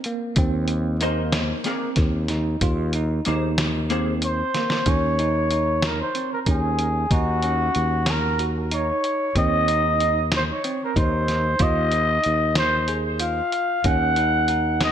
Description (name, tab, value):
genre	progressive instrumental, band music in an uneven meter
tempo	187 BPM (eighths)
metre	7/8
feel	straight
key	Eb dorian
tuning	A4 = 442 Hz
part	lo-fi sampler-style drum kit	drums	0.0-14.9 s	hi-hat, kick drum, snare drum	-25 LUFS	equal	gated reverb
part	barky tine electric piano	arpeggios	0.1-14.9 s	Bb3 to Ab4	-30 LUFS	right 3 dB	fast stereo tremolo
part	sustaining fretless electric bass	bass	0.4-14.9 s	Eb2	-24 LUFS	equal	none
part	vintage hollow-body jazz guitar	accompaniment	1.0-4.1 s	Bb3 to C5	-28 LUFS	left 2 dB	ensemble chorus
part	growling trumpet	melody	4.2-14.9 s	Gb4 to Gb5	-22 LUFS	equal	digital delay
room	moderate plate reverb, RT60 2.0 s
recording	bright 1980s-style digital production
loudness	-19 LUFS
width	side -9 dB against mid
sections	0.0-4.9 A section; 4.9-14.9 B section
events	drum fill 4.5-4.9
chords	0.4 Fm7/Eb (rootless); 4.9 Ebm7; 9.4 F7(no3)/Eb; 13.9 Ebm7